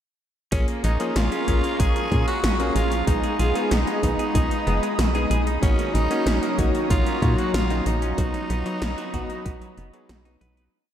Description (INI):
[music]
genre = synthwave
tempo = 94 BPM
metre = 4/4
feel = straight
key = unclear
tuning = A4 = 441 Hz
[part]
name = growling tenor saxophone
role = melody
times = 0.5-10.1 s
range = Db4 to Ab4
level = -29 LUFS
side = equal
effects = analog delay
[part]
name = lush unison pad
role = sustained chords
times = 1.0-10.7 s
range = Gb3 to Eb6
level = -30 LUFS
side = equal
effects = chorus
[part]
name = semi-hollow electric guitar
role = arpeggios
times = 0.5-10.6 s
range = Db3 to B4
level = -34 LUFS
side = right 3 dB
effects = tape echo
[part]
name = clear electric grand piano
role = stabs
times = 0.5-10.7 s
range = F#3 to B4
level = -28 LUFS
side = left 1 dB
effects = tape echo
[part]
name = tight sequencer bass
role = bass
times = 0.5-10.7 s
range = Gb1 to Bb2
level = -24 LUFS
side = equal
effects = tube saturation
[part]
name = 80s electronic pad drums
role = drums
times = 0.5-10.7 s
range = hi-hat, snare drum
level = -29 LUFS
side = equal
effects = none
[part]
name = electronic kick drum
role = drums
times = 0.5-9.6 s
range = none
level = -24 LUFS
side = equal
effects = none
[sound]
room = wet cathedral reverb, RT60 7.5 s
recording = dreamy mix soaked in reverb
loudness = -20 LUFS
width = side -10 dB against mid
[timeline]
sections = 0.5-10.7 verse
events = fade-out 7.3-10.7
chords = 0.5 Bbm7; 3.1 Abm/Cb; 5.6 Ebm7/Bb; 8.2 B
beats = | 0.52 1.16 1.80 2.44 | 3.07 3.71 4.35 4.99 | 5.63 6.26 6.90 7.54 | 8.18 8.82 9.46 10.10